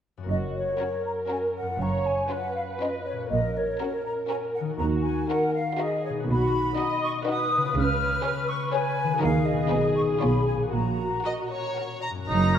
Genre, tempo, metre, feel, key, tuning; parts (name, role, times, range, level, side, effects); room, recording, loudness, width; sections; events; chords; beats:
cinematic, playful, whimsical film cue; 120 BPM; 3/4; straight; F# major; A4 = 439 Hz
concert harp; arpeggios; 0.2-12.6 s; F#2 to B4; -32 LUFS; left 5 dB
flute section; second line; 0.3-11.8 s; C#5 to E#6; -29 LUFS; left 1 dB
dark studio viola section; accompaniment; 0.3-12.0 s; F#4 to D#5; -29 LUFS; right 1 dB
clear studio double bass section; bass; 0.3-12.6 s; F#1 to D#2; -29 LUFS; right 3 dB
rich studio cello section; bass; 0.3-12.6 s; F#2 to D#3; -30 LUFS; right 4 dB
rich studio violin section; melody; 0.8-12.1 s; A#4 to A#5; -35 LUFS; left 3 dB
rich studio violin section; second line; 0.8-12.6 s; C#4 to A#5; -35 LUFS; left 2 dB
warm oboe; second line; 12.3-12.6 s; C#4 to D#4; -26 LUFS; right 3 dB
wet scoring stage reverb, RT60 1.8 s; -24 LUFS; side -9 dB against mid
0.3-12.3 A section
0.3 F#; 1.8 C#7/F#; 3.3 F#/A#; 4.8 D#m; 6.3 B; 7.8 C#7; 9.2 D#m; 9.7 G#m/B; 10.2 C#7/B; 10.7 F#/A#
| 0.29 0.79 1.29 | 1.80 2.30 2.80 | 3.31 3.80 4.30 | 4.79 5.28 5.77 | 6.28 6.78 7.27 | 7.75 8.24 8.73 | 9.22 9.72 10.22 | 10.74 11.26 11.78 | 12.30